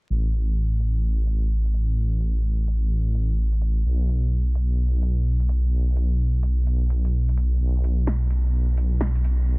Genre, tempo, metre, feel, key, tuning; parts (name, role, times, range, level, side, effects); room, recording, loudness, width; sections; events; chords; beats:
future garage; 128 BPM; 4/4; swing 62% on 16ths; A4 = 435 Hz
dark detuned saw bass; bass; 0.1-9.6 s; A1 to B1; -20 LUFS; equal
garage drum kit; drums; 0.3-9.4 s; hi-hat, snare drum; -33 LUFS; equal; overdrive
digital ambience; dense, heavily limited modern master, vinyl crackle, low-pass filter; -20 LUFS; side -29 dB against mid
0.1-9.6 A section
filter sweep 0.1-9.6
| 0.11 0.57 1.04 1.51 | 1.98 2.45 2.92 3.39 | 3.86 4.33 4.79 5.26 | 5.73 6.20 6.67 7.14 | 7.61 8.07 8.54 9.01 | 9.48